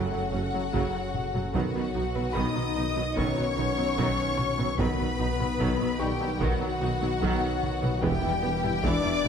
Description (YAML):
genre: cinematic, hybrid orchestral and electronic film score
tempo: 74 BPM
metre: 4/4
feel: straight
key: unclear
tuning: A4 = 440 Hz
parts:
  - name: warm symphonic violin section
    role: melody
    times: 0.0-9.3 s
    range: F#5 to D#6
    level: -34 LUFS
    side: left 3 dB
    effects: none
  - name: warm symphonic violin section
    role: second line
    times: 0.0-9.3 s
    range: F#4 to D#5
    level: -33 LUFS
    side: left 3 dB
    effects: none
  - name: warm symphonic viola section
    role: accompaniment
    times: 0.0-9.3 s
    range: C#3 to G4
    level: -35 LUFS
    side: right 2 dB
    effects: none
  - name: analog drone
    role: sustained chords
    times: 0.0-9.3 s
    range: C#3 to B4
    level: -36 LUFS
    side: left 1 dB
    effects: chorus
  - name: dark trombone section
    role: sustained chords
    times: 0.0-8.3 s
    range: D#3 to B3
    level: -38 LUFS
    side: right 4 dB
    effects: none
  - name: mellow French horn section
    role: sustained chords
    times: 0.0-9.3 s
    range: F#3 to D#4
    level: -34 LUFS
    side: left 5 dB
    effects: none
  - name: tight sequenced synth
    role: arpeggios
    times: 0.0-9.3 s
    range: E3 to B4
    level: -39 LUFS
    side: right 1 dB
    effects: none
  - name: dark detuned saw bass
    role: bass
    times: 0.0-9.3 s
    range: E1 to B1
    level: -36 LUFS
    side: equal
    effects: none
  - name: felt-muted upright piano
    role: texture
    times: 0.0-9.3 s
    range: A5 to C#6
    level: -43 LUFS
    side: left 2 dB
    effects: none
  - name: warm studio cello section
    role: bass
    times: 0.1-9.3 s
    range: E2 to B2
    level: -35 LUFS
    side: right 3 dB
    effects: none
  - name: mellow tuba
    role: bass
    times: 0.3-9.3 s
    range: E1 to B1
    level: -36 LUFS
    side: right 3 dB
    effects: none
  - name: rich symphonic double bass section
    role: bass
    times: 0.3-9.3 s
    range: E1 to B1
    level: -36 LUFS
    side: right 3 dB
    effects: none
  - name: taiko ensemble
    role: drums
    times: 0.7-9.3 s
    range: none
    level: -34 LUFS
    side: equal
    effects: none
room: moderate scoring stage reverb, RT60 1.7 s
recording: dark, warm production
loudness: -25 LUFS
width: side -7 dB against mid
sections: 0.0-9.3 A section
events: none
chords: 0.0 F#m; 1.5 B; 8.0 Em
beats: 0.73 | 1.54 2.36 3.17 3.98 | 4.79 5.60 6.41 7.22 | 8.03 8.84